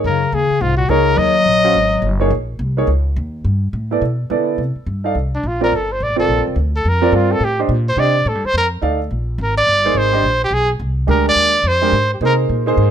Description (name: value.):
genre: jazz.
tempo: 212 BPM.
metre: 4/4.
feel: swing 62% on 8ths.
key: C minor from 4.6 s.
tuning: A4 = 440 Hz.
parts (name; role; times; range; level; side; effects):
breathy bass clarinet; second line; 0.0-2.2 s; Ab2 to Gb3; -19 LUFS; left 8 dB; none.
warm concert grand piano; accompaniment; 0.0-12.9 s; Ab3 to F5; -18 LUFS; right 3 dB; none.
upright bass; bass; 0.0-12.9 s; F1 to D3; -19 LUFS; equal; none.
clear trumpet; melody; 0.1-2.2, 5.3-12.3 s; D4 to Eb5; -16 LUFS; equal; none.
room: light reverb.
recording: close, detailed microphones.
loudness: -14 LUFS.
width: side -9 dB against mid.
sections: 0.0-4.6 A section; 4.6-12.9 B section.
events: trumpet solo 4.6-12.9.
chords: 0.0 Ebm11; 3.4 Gadd9; 4.6 C13sus4; 9.1 Bb13sus4.